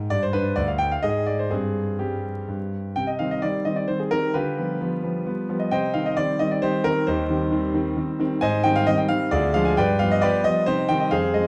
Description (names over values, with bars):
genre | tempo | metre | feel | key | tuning
classical-period piano sonatina | 132 BPM | 3/4 | straight | C minor | A4 = 440 Hz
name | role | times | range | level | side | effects
warm concert grand piano | solo | 0.0-11.5 s | D2 to Ab5 | -23 LUFS | equal | none
room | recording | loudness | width
wet recital hall reverb, RT60 1.7 s | dark, warm production, vinyl crackle | -23 LUFS | mono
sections
0.0-3.0 A section; 3.0-11.5 B section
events
none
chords
0.1 G5; 1.0 N.C.; 1.5 C5/G; 3.0 Cm; 4.3 G7/D; 5.7 Cm; 7.1 Cm/Eb; 8.4 Abmaj7; 9.3 Ddim; 9.8 G7; 10.7 Cm